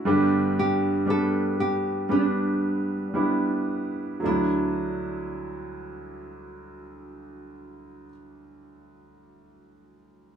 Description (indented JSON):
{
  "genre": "pop",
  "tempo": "54-60 BPM",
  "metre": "4/4",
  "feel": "straight",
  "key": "D major",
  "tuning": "A4 = 439 Hz",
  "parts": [
    { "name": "clear concert grand piano", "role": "accompaniment", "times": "0.0-10.4 s", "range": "D2 to G4", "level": "-25 LUFS", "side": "right 1 dB", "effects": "none" },
    { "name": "nylon-string guitar", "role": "melody", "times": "0.6-8.1 s", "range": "D4 to A4", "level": "-28 LUFS", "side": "equal", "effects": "none" }
  ],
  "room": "moderate studio reverb, RT60 0.7 s",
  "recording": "band playing live in one room, small room ambience",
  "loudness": "-23 LUFS",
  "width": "side -8 dB against mid",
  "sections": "0.0-4.2 A section; 4.2-8.6 B section",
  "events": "slowing down 0.0-4.2",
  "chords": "0.1 G; 4.2 Dadd9",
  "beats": "| 0.06 1.07 2.10 3.15 | 4.24 5.34 6.45 7.55"
}